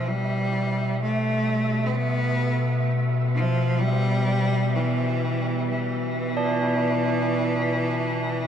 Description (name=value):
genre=dark ambient drone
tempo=free time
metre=none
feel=none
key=E phrygian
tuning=A4 = 438 Hz
part: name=bright cello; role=melody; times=0.0-8.5 s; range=E3 to C4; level=-26 LUFS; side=right 1 dB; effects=diffuse ambient delay
part: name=tubular bells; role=arpeggios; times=0.0-8.5 s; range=D4 to E4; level=-28 LUFS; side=right 5 dB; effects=diffuse ambient delay
part: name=deep rumbling drone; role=drone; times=0.0-8.5 s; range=B2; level=-24 LUFS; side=left 1 dB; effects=built-in reverb
part: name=flickering grainy texture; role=texture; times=0.0-8.5 s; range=E5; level=-35 LUFS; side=right 2 dB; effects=built-in reverb
room=wet huge ambient reverb, RT60 9.1 s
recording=dark, warm production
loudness=-21 LUFS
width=side -8 dB against mid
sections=0.0-8.5 A section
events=fade-in on tubular bells 0.0-8.5; fade-out on synth texture 0.0-8.5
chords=0.0 Em